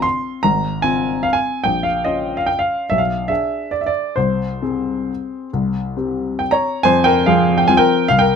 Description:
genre	classical, piano waltz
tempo	130-155 BPM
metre	3/4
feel	rubato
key	F minor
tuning	A4 = 438 Hz
part	warm baby grand piano	solo	0.0-8.4 s	Ab1 to C6	-15 LUFS	equal	none
room	light reverb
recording	close, detailed microphones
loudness	-15 LUFS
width	side -6 dB against mid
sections	0.0-6.9 A section; 6.9-8.4 B section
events	none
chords	0.0 Fm/Ab; 1.7 Bbm; 2.9 Bdim7; 4.2 Ab/C; 5.5 C5; 6.9 Fm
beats	0.04 | 0.44 0.84 1.25 | 1.66 2.06 2.48 | 2.89 3.30 3.73 | 4.18 4.63 5.09 | 5.54 5.97 6.41 | 6.85 7.27 7.69 | 8.11

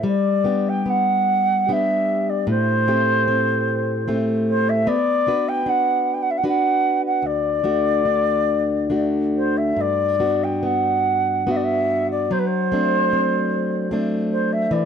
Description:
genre	celtic folk, Celtic slow air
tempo	68-79 BPM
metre	3/4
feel	rubato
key	unclear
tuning	A4 = 444 Hz
part	baroque flute	melody	0.0-14.9 s	B4 to G5	-20 LUFS	equal	none
part	fingerpicked plugged-in steel-string acoustic guitar	accompaniment	0.0-14.9 s	D2 to B4	-21 LUFS	left 1 dB	none
room	little or no reverb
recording	dry, close 1970s-style studio recording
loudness	-18 LUFS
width	side -7 dB against mid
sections	0.0-14.9 A section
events	none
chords	0.0 G; 2.5 Am7; 4.9 Bm; 7.2 D; 9.8 Gmaj7; 12.3 D7/F#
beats	| 0.05 0.88 1.69 | 2.49 3.29 4.08 | 4.87 5.67 6.45 | 7.24 8.07 8.91 | 9.77 10.64 11.48 | 12.31 13.13 13.91 | 14.70

